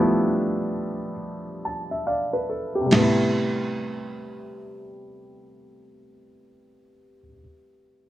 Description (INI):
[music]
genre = lo-fi hip hop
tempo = 71 BPM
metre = 4/4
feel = swing 62% on 16ths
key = A minor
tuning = A4 = 439 Hz
[part]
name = felt-muted upright piano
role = accompaniment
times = 0.0-8.1 s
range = C3 to A5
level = -23 LUFS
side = equal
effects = cassette tape, low-pass filter
[part]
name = clear cello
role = bass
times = 2.9-7.1 s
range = A2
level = -28 LUFS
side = equal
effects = none
[part]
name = dusty soul sampler-style drum kit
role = drums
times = 2.9-3.2 s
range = crash cymbal, snare drum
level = -24 LUFS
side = right 1 dB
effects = none
[sound]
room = moderate small room reverb, RT60 0.6 s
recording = dark, warm production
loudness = -22 LUFS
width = side -14 dB against mid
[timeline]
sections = 0.0-2.9 A section; 2.9-6.3 B section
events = break 0.0-2.9; filter sweep on felt piano 0.0-2.9; felt piano fill 1.2-2.9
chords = 0.0 G9; 2.9 Am9